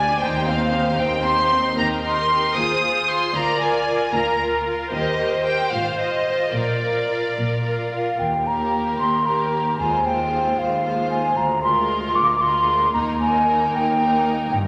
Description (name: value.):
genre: quick classical-period movement for symphony orchestra.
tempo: 76 BPM (dotted quarters).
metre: 6/8.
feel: rubato.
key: Eb major.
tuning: A4 = 441 Hz.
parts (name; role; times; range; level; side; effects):
rich studio violin section; melody; 0.0-14.5 s; Bb4 to Eb6; -26 LUFS; equal; none.
rich studio violin section; second line; 0.0-14.5 s; C4 to C5; -29 LUFS; equal; none.
rich studio viola section; accompaniment; 0.0-14.5 s; Ab3 to D5; -30 LUFS; equal; none.
rich studio cello section; bass; 0.0-14.7 s; D2 to Bb2; -31 LUFS; equal; none.
rich studio double bass section; bass; 0.0-14.7 s; G1 to Eb2; -33 LUFS; equal; none.
mellow hollow silver concert flute; second line; 7.9-14.6 s; F5 to D6; -22 LUFS; equal; none.
room: wet concert hall reverb, RT60 2.2 s.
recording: none.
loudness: -21 LUFS.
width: mono.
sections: 0.0-8.2 A section; 8.2-14.7 B section.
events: none.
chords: 0.2 Cm/Eb; 1.8 Eb; 2.6 Fm7/Eb; 3.3 Bb7/D; 4.9 Eb; 5.7 Fm/Ab; 6.5 Bb; 8.2 Eb; 9.8 Fm7/Eb; 11.4 Bb7/D; 12.9 Eb.